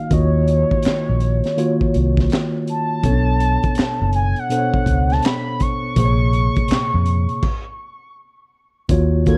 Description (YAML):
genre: R&B, neo-soul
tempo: 82 BPM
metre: 4/4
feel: swing 63% on 16ths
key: unclear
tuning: A4 = 440 Hz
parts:
  - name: mellow horn-like synth lead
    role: melody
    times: 0.0-9.4 s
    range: Db5 to Ab6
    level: -26 LUFS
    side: equal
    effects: chorus, phaser
  - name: mellow tine electric piano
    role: accompaniment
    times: 0.0-9.4 s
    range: Bb2 to Eb5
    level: -23 LUFS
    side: equal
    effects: none
  - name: vintage muted fingered electric bass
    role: bass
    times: 0.1-9.4 s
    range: F#1 to F2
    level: -20 LUFS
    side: equal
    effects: none
  - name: crunchy breakbeat drum kit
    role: drums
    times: 0.1-9.4 s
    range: crash cymbal, handclaps, hi-hat, kick drum, snare drum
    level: -24 LUFS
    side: equal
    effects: none
room: small room ambience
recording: dry, close 1970s-style studio recording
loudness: -18 LUFS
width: mono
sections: 0.0-8.9 A section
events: stop 7.4-8.9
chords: 0.0 Ebm9; 3.0 Bm9; 6.0 Bbm9